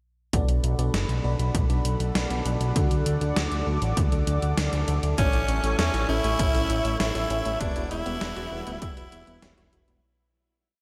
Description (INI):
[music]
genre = synthwave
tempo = 99 BPM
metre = 4/4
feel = straight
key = B minor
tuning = A4 = 441 Hz
[part]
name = chorused pulse-width pad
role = sustained chords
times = 0.3-10.0 s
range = G3 to D6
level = -36 LUFS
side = equal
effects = sidechain pumping
[part]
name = FM electric piano with soft pad layer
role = stabs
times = 0.3-10.0 s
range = G3 to D5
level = -37 LUFS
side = equal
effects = chorus, phaser, diffuse ambient delay
[part]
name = fat analog bass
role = bass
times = 0.3-10.0 s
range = D1 to E2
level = -29 LUFS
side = equal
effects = none
[part]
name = electronic kick drum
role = drums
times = 0.3-8.9 s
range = none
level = -28 LUFS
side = equal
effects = none
[part]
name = gated 80s digital drum machine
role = drums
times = 0.3-10.0 s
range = hi-hat, snare drum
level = -34 LUFS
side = equal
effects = gated reverb, gated reverb snare
[part]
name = raspy tenor saxophone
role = melody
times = 5.2-9.7 s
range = C#4 to E4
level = -31 LUFS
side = equal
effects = diffuse ambient delay
[part]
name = airy dreamy lead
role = second line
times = 5.2-9.7 s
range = C#5 to E5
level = -41 LUFS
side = equal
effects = chorus, diffuse ambient delay
[part]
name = unison pluck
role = arpeggios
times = 5.2-9.9 s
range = A3 to A4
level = -41 LUFS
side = equal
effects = none
[sound]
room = moderate huge ambient reverb, RT60 7.1 s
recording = dreamy mix soaked in reverb, faint mains hum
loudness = -25 LUFS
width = mono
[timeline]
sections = 0.3-10.0 verse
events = fade-out 6.8-10.0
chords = 0.3 Bm7; 2.8 D; 5.2 A; 7.6 Emadd9